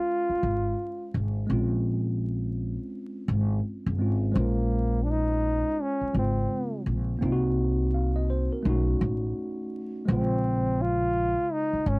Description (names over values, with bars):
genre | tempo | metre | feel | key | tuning
hip hop, jazz-hop | 84 BPM | 4/4 | swing 62% on 16ths | Bb minor | A4 = 440 Hz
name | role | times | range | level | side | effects
breathy trombone | melody | 0.0-12.0 s | Bb3 to F4 | -27 LUFS | equal | none
tine electric piano | accompaniment | 0.0-12.0 s | Db3 to F5 | -31 LUFS | equal | medium stereo tremolo
upright bass | bass | 0.3-12.0 s | Gb1 to C2 | -26 LUFS | equal | transformer saturation
room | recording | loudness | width
light reverb | home recording on cassette, vinyl crackle | -24 LUFS | side -27 dB against mid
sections
0.0-4.4 A section; 4.4-12.0 B section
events
none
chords
0.0 Bbm9; 7.2 Cm7b5; 8.6 B9; 10.1 Bbm9